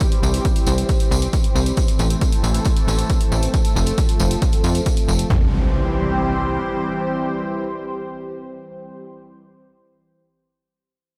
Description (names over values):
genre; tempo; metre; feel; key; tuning
uplifting trance; 136 BPM; 4/4; straight; C major; A4 = 440 Hz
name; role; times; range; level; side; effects
lush unison pad; sustained chords; 0.0-9.0 s; E3 to C5; -26 LUFS; equal; chorus, phaser, sidechain pumping
electronic hi-hat; drums; 0.0-5.3 s; none; -35 LUFS; equal; none
punchy analog drum machine; drums; 0.0-5.4 s; kick drum, toms; -21 LUFS; equal; none
tambourine; percussion; 0.0-5.3 s; none; -33 LUFS; equal; none
tight sequencer bass; bass; 0.2-6.6 s; F1 to F2; -23 LUFS; equal; sidechain pumping
impact; sound effects; 5.3-9.1 s; none; -28 LUFS; equal; none
room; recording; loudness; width
moderate lush hall reverb, RT60 2.0 s; dreamy mix soaked in reverb; -19 LUFS; mono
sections
0.0-5.3 A section; 5.3-8.8 B section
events
none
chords
0.0 C; 1.8 Am; 3.5 F; 5.3 C